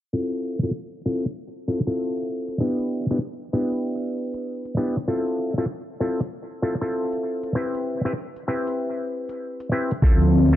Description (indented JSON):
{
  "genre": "glitch hop",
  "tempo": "97 BPM",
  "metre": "4/4",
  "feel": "swing 62% on 16ths",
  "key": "unclear",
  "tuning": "A4 = 443 Hz",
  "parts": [
    { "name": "auto-wah clav", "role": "stabs", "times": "0.1-10.6 s", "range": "B3 to B4", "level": "-24 LUFS", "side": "equal", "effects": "overdrive, sidechain pumping, low-pass filter, dub echo" },
    { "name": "electronic hi-hat", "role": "drums", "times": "0.3-10.6 s", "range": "none", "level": "-52 LUFS", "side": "equal", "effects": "overdrive, studio reverb" },
    { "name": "warm analog pad", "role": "sustained chords", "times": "10.0-10.6 s", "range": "D2 to C4", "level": "-15 LUFS", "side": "equal", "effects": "chorus, sidechain pumping" },
    { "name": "electronic kick drum", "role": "drums", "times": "10.0-10.2 s", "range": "none", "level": "-16 LUFS", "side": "equal", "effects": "overdrive, studio reverb" }
  ],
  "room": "light reverb",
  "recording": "low-pass filter",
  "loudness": "-23 LUFS",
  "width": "side -13 dB against mid",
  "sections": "0.1-10.6 A section",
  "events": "filter sweep on clav 0.1-10.6; filter sweep 0.1-10.6",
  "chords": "0.1 Fmaj7/C; 2.6 Em7; 5.1 Fmaj7/C; 7.6 Cmaj7; 10.0 Dm7",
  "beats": "| 0.13 0.75 1.37 1.99 | 2.60 3.22 3.84 4.46 | 5.08 5.70 6.32 6.93 | 7.55 8.17 8.79 9.41 | 10.03"
}